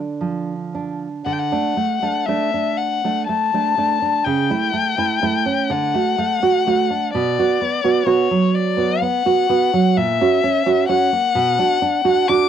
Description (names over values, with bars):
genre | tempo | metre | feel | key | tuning
romantic duo for violin and classical guitar | 37-43 BPM (dotted quarters) | 6/8 | rubato | D major | A4 = 440 Hz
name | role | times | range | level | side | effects
nylon-string guitar | accompaniment | 0.0-12.5 s | A#2 to F#4 | -18 LUFS | right 5 dB | cassette tape
warm violin | melody | 1.3-12.5 s | C#5 to D6 | -19 LUFS | left 8 dB | cassette tape
room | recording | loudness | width
light reverb | home recording on cassette | -16 LUFS | side -9 dB against mid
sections
0.0-1.3 A section; 1.3-12.5 B section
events
none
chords
0.0 Dm; 1.3 D5; 4.3 A/C#; 5.7 D; 7.2 Bm; 10.0 F#/A#; 11.3 Bm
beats
| 1.27 2.80 | 4.26 5.71 | 7.15 8.54 | 9.95 11.35